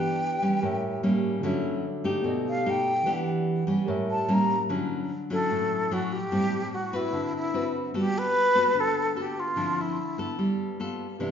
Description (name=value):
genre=bossa nova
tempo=148 BPM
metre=4/4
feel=straight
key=D major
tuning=A4 = 440 Hz
part: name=breathy concert flute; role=melody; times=0.0-10.6 s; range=E4 to Bb5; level=-26 LUFS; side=left 1 dB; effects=none
part: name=nylon-string guitar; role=accompaniment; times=0.0-11.3 s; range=A2 to B4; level=-28 LUFS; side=equal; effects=none
part: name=tine electric piano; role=accompaniment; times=0.0-4.7, 11.2-11.3 s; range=D3 to F#6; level=-31 LUFS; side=right 2 dB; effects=none
room=wet recital hall reverb, RT60 1.5 s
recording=recorded in a church or concert hall, nothing above 7.5 kHz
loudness=-24 LUFS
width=side -8 dB against mid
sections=0.0-4.7 A section; 4.7-11.3 B section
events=flute solo 0.0-4.7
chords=0.0 Em7; 0.6 A7b9; 1.4 Dmaj9; 2.3 B7alt; 3.1 Em7; 3.9 A7b9; 4.7 Dmaj9; 6.3 Am7; 7.1 D13; 7.9 Gmaj9; 9.6 Dm9; 10.4 G9